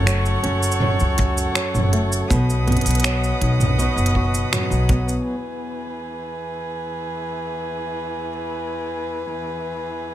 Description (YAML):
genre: folktronica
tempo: 81 BPM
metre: 4/4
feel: straight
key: E major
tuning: A4 = 441 Hz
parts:
  - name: rich string quartet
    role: sustained chords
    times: 0.0-10.1 s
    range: E2 to D#6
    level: -26 LUFS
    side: equal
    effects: none
  - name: flamenco guitar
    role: arpeggios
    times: 0.0-5.8 s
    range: F#2 to F#4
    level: -24 LUFS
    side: equal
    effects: ping-pong delay
  - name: upright bass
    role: bass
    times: 0.0-5.2 s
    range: F#1 to C#2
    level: -21 LUFS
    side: equal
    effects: none
  - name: organic electronic drum kit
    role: drums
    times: 0.1-5.2 s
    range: cabasa, finger snaps, hi-hat, toms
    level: -23 LUFS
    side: right 1 dB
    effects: overdrive
  - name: kick drum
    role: drums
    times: 1.2-5.0 s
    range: none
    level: -21 LUFS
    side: equal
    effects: none
room: studio reverb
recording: none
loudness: -19 LUFS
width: side -12 dB against mid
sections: 0.0-5.3 A section; 5.3-10.1 B section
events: none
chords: 0.0 F#m; 2.3 B; 5.3 E